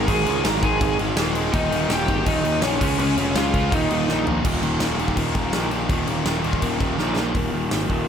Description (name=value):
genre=punk rock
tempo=165 BPM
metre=4/4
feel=straight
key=unclear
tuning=A4 = 442 Hz
part: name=lead guitar through a small cranked amp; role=melody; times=0.0-4.2 s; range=Db4 to Bb5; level=-24 LUFS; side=equal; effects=overdrive, digital delay
part: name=crunchy overdriven guitar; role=riff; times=0.0-8.1 s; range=Eb2 to Db4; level=-27 LUFS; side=left 12 dB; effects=none
part: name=crunchy overdriven guitar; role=riff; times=0.0-8.1 s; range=Eb2 to Db4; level=-27 LUFS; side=right 12 dB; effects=none
part: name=tight distorted guitar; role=riff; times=0.0-7.4 s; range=Eb2 to Db4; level=-31 LUFS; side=right 1 dB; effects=distortion
part: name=fuzz picked electric bass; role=bass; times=0.0-8.1 s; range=Eb1 to Eb2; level=-26 LUFS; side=equal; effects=overdrive
part: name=big rock drum kit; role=drums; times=0.1-8.0 s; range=crash cymbal, hi-hat, kick drum, snare drum, toms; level=-25 LUFS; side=equal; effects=none
room=little or no reverb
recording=none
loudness=-19 LUFS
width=side -8 dB against mid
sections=0.0-4.4 A section; 4.4-7.4 B section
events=drum fill 4.1-4.4, 7.0-7.4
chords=0.0 Ab5; 1.5 Eb; 2.8 Db; 3.7 Eb5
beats=| 0.08 0.44 0.81 1.17 | 1.53 1.90 2.26 2.62 | 2.99 3.35 3.71 4.08 | 4.44 4.80 5.17 5.53 | 5.89 6.26 6.62 6.99 | 7.35 7.72